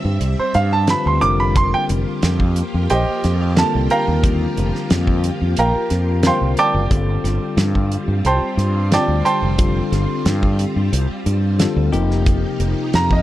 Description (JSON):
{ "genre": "electric jazz fusion", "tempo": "90 BPM", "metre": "4/4", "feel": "straight", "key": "unclear", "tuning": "A4 = 442 Hz", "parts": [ { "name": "bell-like tine electric piano", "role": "accompaniment", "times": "0.0-13.1 s", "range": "C3 to C5", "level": "-23 LUFS", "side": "left 4 dB", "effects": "none" }, { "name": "string machine, violins", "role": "sustained chords", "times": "0.0-13.2 s", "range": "F3 to E5", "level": "-27 LUFS", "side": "equal", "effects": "ensemble chorus" }, { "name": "fretless electric bass", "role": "bass", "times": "0.0-13.2 s", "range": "F1 to G2", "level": "-18 LUFS", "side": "equal", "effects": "none" }, { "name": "damped 70s drum kit", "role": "drums", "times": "0.2-13.2 s", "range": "hi-hat, kick drum, snare drum", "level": "-19 LUFS", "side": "equal", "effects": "none" }, { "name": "warm baby grand piano", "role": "melody", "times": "0.4-13.2 s", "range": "G4 to D6", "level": "-20 LUFS", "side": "right 3 dB", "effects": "none" } ], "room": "light reverb, small room ambience", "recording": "dark, warm production", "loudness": "-15 LUFS", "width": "side -14 dB against mid", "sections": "0.0-13.2 A section", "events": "grand piano solo 0.0-13.2", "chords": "0.0 G7sus4; 1.2 Fsus4; 6.9 G9sus4; 11.9 F9sus4", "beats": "0.22 0.89 | 1.56 2.23 2.90 3.57 | 4.24 4.91 5.58 6.25 | 6.92 7.58 8.25 8.92 | 9.59 10.26 10.93 11.60 | 12.27 12.94" }